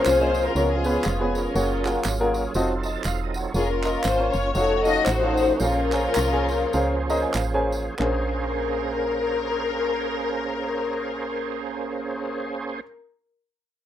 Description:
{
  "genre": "uptempo gospel",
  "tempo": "90-120 BPM",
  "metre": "4/4",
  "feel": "swing 59% on 8ths",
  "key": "Bb minor",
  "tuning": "A4 = 443 Hz",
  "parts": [
    { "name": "dark studio string section", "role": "melody", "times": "0.0-12.8 s", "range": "Cb4 to Eb5", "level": "-24 LUFS", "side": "left 4 dB", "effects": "none" },
    { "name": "warm baby grand piano", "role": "accompaniment", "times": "0.0-12.8 s", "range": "Bb1 to Bb5", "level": "-27 LUFS", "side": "equal", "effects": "none" },
    { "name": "overdriven tonewheel organ", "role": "sustained chords", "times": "0.0-12.8 s", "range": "F3 to A5", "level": "-29 LUFS", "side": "right 5 dB", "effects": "chorus vibrato, slow rotary speaker" },
    { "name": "woody FM bass", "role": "bass", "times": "0.1-12.8 s", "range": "E1 to Db2", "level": "-28 LUFS", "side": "right 1 dB", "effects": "none" },
    { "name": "handclaps and tambourine", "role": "percussion", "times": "0.1-8.4 s", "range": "none", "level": "-34 LUFS", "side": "right 3 dB", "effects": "none" }
  ],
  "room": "little or no reverb",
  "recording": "rough home demo mix",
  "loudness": "-21 LUFS",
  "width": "side -11 dB against mid",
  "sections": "0.0-8.0 A section; 8.0-13.3 B section",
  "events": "tonewheel organ fill 2.5-3.5; slowing down 3.5-8.0; grand piano fill 6.7-8.0",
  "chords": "0.0 Bbm9; 0.6 Db7; 1.6 Gbmaj9; 2.5 F7b9; 3.5 Bbm/F; 4.6 F7b9b13; 5.6 Bbm9",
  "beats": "0.06 0.56 1.05 | 1.55 2.05 2.55 3.05 | 3.55 4.05 4.55 5.08 | 5.61 6.16 6.74 7.35 | 8.00 8.66 9.32 9.99 | 10.66 11.32 11.99 12.65"
}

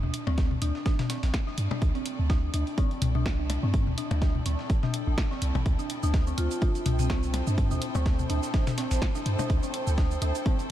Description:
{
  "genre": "minimal techno",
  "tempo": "125 BPM",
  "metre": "4/4",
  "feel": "swing 56% on 16ths",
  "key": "unclear",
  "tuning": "A4 = 440 Hz",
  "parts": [
    { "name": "dark detuned synth bell", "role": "riff", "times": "0.0-10.5 s", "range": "C4 to D4", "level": "-35 LUFS", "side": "left 1 dB", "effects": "chorus, phaser, sidechain pumping, low-pass filter, analog delay" },
    { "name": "punchy sub bass", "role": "bass", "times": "0.0-10.3 s", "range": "A1 to G2", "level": "-27 LUFS", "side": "equal", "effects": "sidechain pumping" },
    { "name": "electronic toms and percussion blips", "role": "percussion", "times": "0.0-9.5 s", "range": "none", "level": "-34 LUFS", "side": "left 4 dB", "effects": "analog delay" },
    { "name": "dark studio string section", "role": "texture", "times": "0.0-10.7 s", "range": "E4 to G5", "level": "-38 LUFS", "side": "right 1 dB", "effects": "sidechain pumping" },
    { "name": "dusty soul sampler-style drum kit", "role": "drums", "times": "0.1-10.7 s", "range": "hi-hat, snare drum", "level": "-45 LUFS", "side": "equal", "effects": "none" },
    { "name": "punchy analog drum machine", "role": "drums", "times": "0.1-10.7 s", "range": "cabasa, hi-hat, snare drum", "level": "-38 LUFS", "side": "right 1 dB", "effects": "none" },
    { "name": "electronic kick drum", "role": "drums", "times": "0.4-10.6 s", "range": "none", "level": "-27 LUFS", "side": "equal", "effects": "none" },
    { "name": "marimba with medium mallets", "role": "melody", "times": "6.4-7.3 s", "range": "C4 to F4", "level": "-37 LUFS", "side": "right 1 dB", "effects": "analog delay" }
  ],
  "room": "light reverb",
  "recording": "none",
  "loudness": "-25 LUFS",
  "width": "side -12 dB against mid",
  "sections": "0.0-10.7 A section",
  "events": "fade-in on string section 0.0-10.7",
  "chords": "0.0 Dsus4",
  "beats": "0.38 0.86 1.34 | 1.82 2.30 2.78 3.26 | 3.74 4.22 4.70 5.18 | 5.66 6.14 6.62 7.10 | 7.58 8.06 8.54 9.02 | 9.50 9.98 10.46"
}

